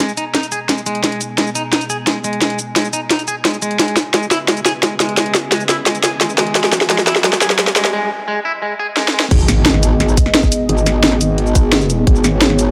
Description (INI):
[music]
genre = dark technical drum and bass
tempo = 174 BPM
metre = 4/4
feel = straight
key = G# minor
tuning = A4 = 440 Hz
[part]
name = dark analog pad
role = sustained chords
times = 0.0-12.7 s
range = B3 to E5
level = -25 LUFS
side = equal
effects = chorus, sidechain pumping
[part]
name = semi-hollow electric guitar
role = arpeggios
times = 0.0-9.2 s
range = G#3 to G#4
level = -23 LUFS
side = equal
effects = sidechain pumping, dub echo
[part]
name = drum and bass drum kit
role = drums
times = 0.0-12.7 s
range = crash cymbal, hi-hat, shaker, snare drum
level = -17 LUFS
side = equal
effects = none
[part]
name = electronic kick drum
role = drums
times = 0.0-12.1 s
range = none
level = -18 LUFS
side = equal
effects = high-pass filter on kick
[part]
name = riser and impact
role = sound effects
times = 6.2-10.7 s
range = none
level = -25 LUFS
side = equal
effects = none
[part]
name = metallic wobble bass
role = bass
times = 9.3-12.7 s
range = G#1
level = -18 LUFS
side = equal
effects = chorus, tube saturation
[sound]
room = light reverb, digital ambience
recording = high-pass filter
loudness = -15 LUFS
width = mono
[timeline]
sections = 0.0-9.3 A section; 9.3-12.7 B section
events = build-up 0.0-9.3; drum fill 0.0-7.9, 9.0-9.3; filter sweep on analog synth pad 0.0-9.3; riser 6.2-7.9; break 7.9-9.3; drop 9.3-12.7; impact 9.3-10.7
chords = 0.0 G#m; 3.8 C#m7; 9.3 G#m